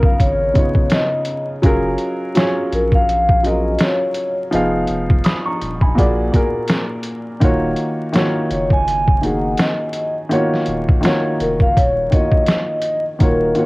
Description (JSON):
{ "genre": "lo-fi hip hop", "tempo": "83 BPM", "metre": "4/4", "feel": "swing 57% on 16ths", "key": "Eb minor", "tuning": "A4 = 440 Hz", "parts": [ { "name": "vibraphone with soft mallets", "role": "melody", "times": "0.0-13.7 s", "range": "Bb4 to Ab5", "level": "-19 LUFS", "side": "equal", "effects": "low-pass filter, tape echo" }, { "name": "dark upright piano", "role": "accompaniment", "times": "0.0-13.7 s", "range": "Bb2 to Eb6", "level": "-19 LUFS", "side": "equal", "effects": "cassette tape, low-pass filter" }, { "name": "saturated sub bass", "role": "bass", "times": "0.0-13.5 s", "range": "Eb1 to Cb2", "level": "-24 LUFS", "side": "equal", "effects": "none" }, { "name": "trip hop sampler-style drum kit", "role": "drums", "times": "0.0-13.7 s", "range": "hi-hat, kick drum, snare drum", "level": "-16 LUFS", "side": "equal", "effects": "cassette tape" } ], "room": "light reverb, digital ambience", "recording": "home recording on cassette, vinyl crackle", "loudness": "-14 LUFS", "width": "side -22 dB against mid", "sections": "0.0-13.2 A section", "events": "none", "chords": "0.0 Db13; 1.6 Gbmaj9; 4.5 Fm7b5; 6.0 Bb7b13; 7.4 Ebm9", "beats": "0.19 0.91 | 1.64 2.36 3.08 3.80 | 4.53 5.25 5.97 6.70 | 7.42 8.14 8.86 9.59 | 10.31 11.03 11.76 12.48 | 13.20" }